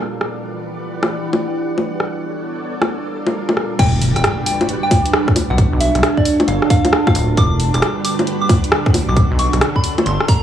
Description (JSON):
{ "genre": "UK garage, two-step garage", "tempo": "134 BPM", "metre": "4/4", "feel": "swing 64% on 16ths", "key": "E minor", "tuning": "A4 = 445 Hz", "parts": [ { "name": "soft string machine", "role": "sustained chords", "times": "0.0-10.4 s", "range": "E3 to F#5", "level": "-26 LUFS", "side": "right 1 dB", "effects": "ensemble chorus, sidechain pumping" }, { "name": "deep dark ambient pad", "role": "texture", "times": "0.0-10.4 s", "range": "D3 to A5", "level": "-23 LUFS", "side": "right 2 dB", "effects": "chorus, built-in reverb, sidechain pumping" }, { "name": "garage drum kit", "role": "drums", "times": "0.2-10.4 s", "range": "bongos, crash cymbal, hi-hat, rim click", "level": "-18 LUFS", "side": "equal", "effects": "none" }, { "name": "soft synth bell", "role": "melody", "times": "3.8-10.4 s", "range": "D5 to D6", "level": "-22 LUFS", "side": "left 1 dB", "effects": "chorus, phaser, digital delay" }, { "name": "rubbery square bass", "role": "bass", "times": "3.8-10.2 s", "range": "D1 to B1", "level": "-17 LUFS", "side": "equal", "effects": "none" }, { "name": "electronic kick drum", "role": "drums", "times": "3.8-10.4 s", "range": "none", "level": "-14 LUFS", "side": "equal", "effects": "none" }, { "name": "impact", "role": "sound effects", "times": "3.8-5.6 s", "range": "none", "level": "-24 LUFS", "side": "equal", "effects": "none" } ], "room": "moderate plate reverb, RT60 2.3 s", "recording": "small room reverb", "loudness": "-14 LUFS", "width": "side -10 dB against mid", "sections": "0.0-3.8 A section; 3.8-10.4 B section", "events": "drop 3.8-10.4; impact 3.8-5.6", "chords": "0.2 Em9; 2.0 Bm9; 2.9 Gm9; 3.8 Em9; 5.6 Bm9; 6.5 Gm9; 7.4 Em9; 9.2 Bm9", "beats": "| 0.21 0.66 1.10 1.55 | 2.00 2.45 2.90 3.34 | 3.79 4.24 4.69 5.13 | 5.58 6.03 6.48 6.93 | 7.37 7.82 8.27 8.72 | 9.16 9.61 10.06" }